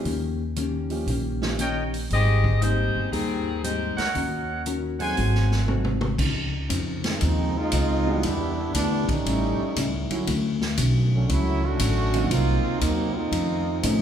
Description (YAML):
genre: jazz, big band swing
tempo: 118 BPM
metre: 4/4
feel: swing 67% on 8ths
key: Ab major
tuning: A4 = 440 Hz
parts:
  - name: warm upright piano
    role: accompaniment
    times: 0.0-14.0 s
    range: D3 to Ab4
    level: -31 LUFS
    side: right 3 dB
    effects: none
  - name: hollow-body jazz guitar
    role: accompaniment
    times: 0.1-14.0 s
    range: F2 to Bb4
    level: -31 LUFS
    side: left 4 dB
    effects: none
  - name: upright bass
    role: bass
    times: 0.1-14.0 s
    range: G1 to A2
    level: -25 LUFS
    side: equal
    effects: none
  - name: swinging big-band drum kit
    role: drums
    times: 0.1-14.0 s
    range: crash cymbal, hi-hat, kick drum, ride cymbal, snare drum, toms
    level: -30 LUFS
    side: equal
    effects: none
  - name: warm trumpet section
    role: stabs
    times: 1.6-5.6 s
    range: Bb4 to Ab5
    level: -29 LUFS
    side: right 2 dB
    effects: none
  - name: mellow saxophone section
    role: melody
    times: 2.1-4.0 s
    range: Eb3 to Eb5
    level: -27 LUFS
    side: left 3 dB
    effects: none
  - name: bright trombone section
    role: second line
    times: 7.1-14.0 s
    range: D3 to F#4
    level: -26 LUFS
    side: right 2 dB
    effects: none
room: wet large studio reverb, RT60 1.2 s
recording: heard from further back in the room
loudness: -22 LUFS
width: side -9 dB against mid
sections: 0.0-6.2 A section; 6.2-14.0 B section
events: drum fill 5.7-6.2; trombone section solo 6.2-14.0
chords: 0.1 Eb7; 2.1 Abmaj7; 4.1 Ebm7; 5.2 Ab7b9; 6.2 Dbmaj9; 8.2 Em7; 9.2 A7; 10.3 Dmaj7; 12.3 Cm7b5; 13.3 F7b13